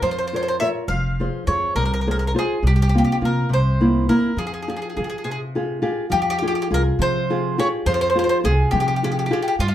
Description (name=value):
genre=italian folk, Italian serenade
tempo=69 BPM (dotted quarters)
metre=6/8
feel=straight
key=F minor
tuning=A4 = 443 Hz
part: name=bowl-back mandolin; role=melody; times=0.0-9.7 s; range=F4 to F5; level=-23 LUFS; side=equal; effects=none
part: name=nylon-string guitar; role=accompaniment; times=0.0-9.7 s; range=C3 to Db5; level=-22 LUFS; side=left 1 dB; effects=none
part: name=upright bass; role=bass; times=0.0-9.7 s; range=F1 to F3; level=-22 LUFS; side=equal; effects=none
room=wet small room reverb, RT60 0.6 s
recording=heard from further back in the room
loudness=-18 LUFS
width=side -11 dB against mid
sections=0.0-6.1 A section; 6.1-9.7 B section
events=none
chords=0.0 Bbm; 0.9 Fm; 2.6 C7sus4; 3.5 C7; 4.4 Fmadd9